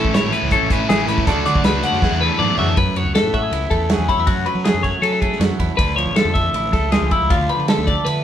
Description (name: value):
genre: math rock and midwest emo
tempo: 159 BPM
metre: 4/4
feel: straight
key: unclear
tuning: A4 = 439 Hz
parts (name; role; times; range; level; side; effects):
- twelve-string electric guitar; accompaniment; 0.0-8.2 s; F#2 to A4; -24 LUFS; right 6 dB; none
- twelve-string electric guitar; arpeggios; 0.0-8.2 s; E4 to F#5; -20 LUFS; left 4 dB; phaser
- overdriven electric guitar; riff; 0.0-2.8 s; A2 to G#4; -22 LUFS; equal; none
- fuzz fingered electric bass; bass; 0.0-8.2 s; G#1 to F#3; -23 LUFS; equal; overdrive
- modern studio drum kit; drums; 0.0-8.2 s; hi-hat, kick drum, ride cymbal, snare drum, toms; -20 LUFS; right 1 dB; none
room: moderate studio reverb, RT60 0.8 s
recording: band playing live in one room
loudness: -15 LUFS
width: side -10 dB against mid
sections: 0.0-2.8 A section; 2.8-8.2 B section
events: drum fill 2.0-2.8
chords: 0.0 Amaj9; 1.3 Dmaj7; 2.0 E7sus4; 2.8 F#m11; 5.8 Dmadd9